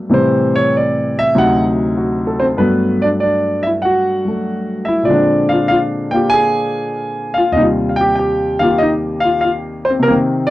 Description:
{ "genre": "solo jazz", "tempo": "96 BPM", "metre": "4/4", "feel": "swing 69% on 8ths", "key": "unclear", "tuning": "A4 = 442 Hz", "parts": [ { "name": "warm grand piano", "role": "solo", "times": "0.0-10.5 s", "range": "D2 to Ab5", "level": "-13 LUFS", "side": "equal", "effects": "none" } ], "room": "little or no reverb", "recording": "dry, close 1970s-style studio recording", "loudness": "-13 LUFS", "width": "side -16 dB against mid", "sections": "0.0-2.6 A section; 2.6-10.5 B section", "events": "grand piano solo 0.0-2.6", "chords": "0.1 Am7; 1.3 D7b9; 2.6 Gmaj9; 5.1 Bb13; 7.6 Eb69", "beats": "| 0.10 0.73 1.35 1.97 | 2.59 3.21 3.84 4.46 | 5.08 5.70 6.33 6.95 | 7.57 8.19 8.82 9.44 | 10.06" }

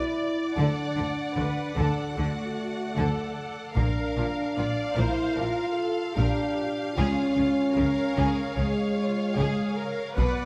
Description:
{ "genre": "cinematic, epic orchestral film score", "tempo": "75 BPM", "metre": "4/4", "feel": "straight", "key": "unclear", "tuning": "A4 = 440 Hz", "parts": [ { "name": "warm symphonic violin section", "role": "melody", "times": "0.0-10.5 s", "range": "D5 to F#5", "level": "-40 LUFS", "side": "equal", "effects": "none" }, { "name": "warm symphonic violin section", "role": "second line", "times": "0.0-10.5 s", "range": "C#4 to E#5", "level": "-37 LUFS", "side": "equal", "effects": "none" }, { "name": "rich symphonic viola section", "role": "accompaniment", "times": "0.0-10.5 s", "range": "E#4 to D5", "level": "-38 LUFS", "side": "equal", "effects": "none" }, { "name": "mellow French horn section", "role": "sustained chords", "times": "0.0-10.5 s", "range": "G#3 to E#4", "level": "-31 LUFS", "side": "equal", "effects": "none" }, { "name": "rich symphonic cello section", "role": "bass", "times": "0.6-10.3 s", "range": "A#2 to D3", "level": "-33 LUFS", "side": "equal", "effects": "none" }, { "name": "warm symphonic double bass section", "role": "bass", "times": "0.6-10.3 s", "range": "A#1 to D2", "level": "-34 LUFS", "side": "equal", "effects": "none" }, { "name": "solo taiko drums", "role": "drums", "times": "3.8-5.3, 10.2-10.5 s", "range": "none", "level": "-30 LUFS", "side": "equal", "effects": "none" } ], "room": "wet scoring stage reverb, RT60 1.8 s", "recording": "none", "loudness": "-27 LUFS", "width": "mono", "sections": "0.0-10.5 A section", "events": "none", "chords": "0.0 Bm; 0.6 D; 3.8 A#; 7.0 C#", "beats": "| 0.57 1.37 2.17 2.97 | 3.77 4.57 5.37 6.17 | 6.97 7.77 8.57 9.37 | 10.17" }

